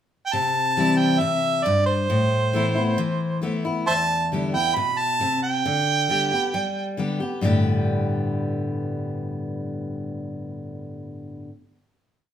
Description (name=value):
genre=country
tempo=135 BPM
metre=4/4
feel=straight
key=G major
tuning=A4 = 440 Hz
part: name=warm harmonica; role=melody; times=0.3-6.9 s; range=C5 to B5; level=-22 LUFS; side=right 3 dB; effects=plate reverb
part: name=picked steel-string acoustic guitar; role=accompaniment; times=0.3-11.5 s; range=E2 to G4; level=-24 LUFS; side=left 2 dB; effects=none
room=wet studio reverb, RT60 0.8 s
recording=heard from further back in the room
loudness=-20 LUFS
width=side -9 dB against mid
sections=0.0-0.3 pickup bar; 0.3-7.4 A section; 7.4-11.0 final chord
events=none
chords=0.3 C; 2.1 Amadd9; 3.9 Em; 5.6 G/D; 7.4 Gadd9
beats=| 0.33 0.77 1.21 1.66 | 2.10 2.54 2.98 3.43 | 3.87 4.31 4.76 5.20 | 5.64 6.09 6.53 6.98 | 7.42 7.87 8.31 8.76 | 9.20 9.65 10.10 10.54